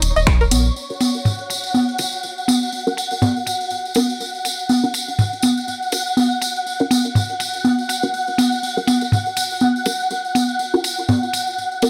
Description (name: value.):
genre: minimal techno.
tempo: 122 BPM.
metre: 4/4.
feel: swing 57% on 16ths.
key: Eb minor.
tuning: A4 = 440 Hz.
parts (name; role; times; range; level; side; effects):
round analog bass; bass; 0.0-0.7 s; Eb1 to Bb1; -21 LUFS; equal; sidechain pumping.
punchy analog drum machine; drums; 0.0-11.9 s; finger snaps, hi-hat; -25 LUFS; equal; low-pass filter on hats, low-pass filter on snare.
tambourine; percussion; 0.0-11.9 s; none; -27 LUFS; equal; none.
flickering grainy texture; texture; 0.0-11.9 s; Db5 to Gb5; -27 LUFS; equal; built-in reverb, sidechain pumping.
electronic congas and toms; percussion; 0.5-11.9 s; none; -20 LUFS; equal; overdrive.
filtered dub chord stab; stabs; 0.9-11.9 s; Db4 to Bb4; -25 LUFS; equal; phaser, ensemble chorus, tape echo.
room: light reverb.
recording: dry, gritty hardware recording.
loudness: -19 LUFS.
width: mono.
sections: 0.8-11.9 A section.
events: band accent 0.3; filter sweep on synth stab 0.8-11.9.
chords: 0.0 Eb7(no3); 0.8 N.C..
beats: 0.27 | 0.76 1.25 1.74 2.24 | 2.73 3.22 3.71 4.20 | 4.70 5.19 5.68 6.17 | 6.66 7.15 7.64 8.14 | 8.63 9.12 9.61 10.10 | 10.60 11.09 11.58.